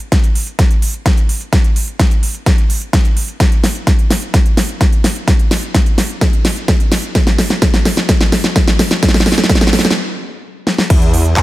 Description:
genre	EDM, festival progressive house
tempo	128 BPM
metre	4/4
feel	straight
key	unclear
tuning	A4 = 437 Hz
part	big-room dance drum kit	drums	0.0-11.4 s	crash cymbal, handclaps, hi-hat, snare drum	-15 LUFS	equal	small room ambience
part	electronic kick drum	drums	0.1-11.4 s	none	-12 LUFS	equal	small room ambience
part	wide detuned saw bass	bass	10.9-11.4 s	E2	-13 LUFS	equal	chorus, sidechain pumping
room	light reverb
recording	none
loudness	-11 LUFS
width	side -17 dB against mid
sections	0.0-10.9 A section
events	build-up 0.0-10.9; drum fill 0.0-10.0, 10.7; stop 10.0-10.9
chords	none

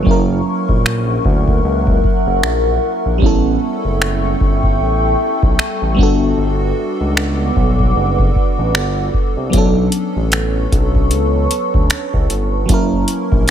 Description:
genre	contemporary R&B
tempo	76 BPM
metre	4/4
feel	swing 58% on 16ths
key	B minor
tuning	A4 = 439 Hz
part	FM electric piano with soft pad layer	accompaniment	0.0-13.5 s	F#3 to A#4	-19 LUFS	right 1 dB	chorus, phaser
part	deep dark ambient pad	sustained chords	0.0-13.5 s	A4 to D6	-21 LUFS	equal	chorus, built-in reverb
part	smooth synth bass	bass	0.1-13.5 s	F#1 to D2	-18 LUFS	equal	none
part	booming analog drum machine	drums	0.1-13.5 s	finger snaps, hi-hat, kick drum	-16 LUFS	equal	none
room	digital ambience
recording	none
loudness	-13 LUFS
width	side -9 dB against mid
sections	0.0-13.5 A section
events	break 0.0-9.5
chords	0.1 F#7; 3.2 A7; 6.0 Gmaj7; 9.5 Bm9; 12.7 F#7

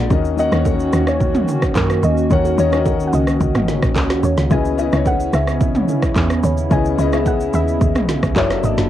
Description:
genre	amapiano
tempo	109 BPM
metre	4/4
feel	straight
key	unclear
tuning	A4 = 441 Hz
part	soft round pluck	melody	0.0-8.9 s	A#4 to G#5	-23 LUFS	equal	chorus, cassette tape, analog delay
part	warm concert grand piano	accompaniment	0.0-8.9 s	C#3 to F#5	-22 LUFS	left 8 dB	none
part	hollow soft pad	sustained chords	0.0-8.9 s	C#3 to F#4	-22 LUFS	right 2 dB	chorus, sidechain pumping
part	woody log drum bass	bass	0.0-8.9 s	F#1 to F#2	-20 LUFS	equal	none
part	deep house drum kit	drums	0.1-8.9 s	handclaps, kick drum, rim click, shaker, snare drum, toms	-20 LUFS	right 1 dB	cassette tape
part	congas and bongos	percussion	0.1-8.8 s	none	-28 LUFS	right 10 dB	none
room	light reverb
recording	home recording on cassette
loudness	-14 LUFS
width	side -12 dB against mid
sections	0.0-8.9 A section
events	none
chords	0.1 D#m7; 4.5 C#m9; 8.4 F#7alt

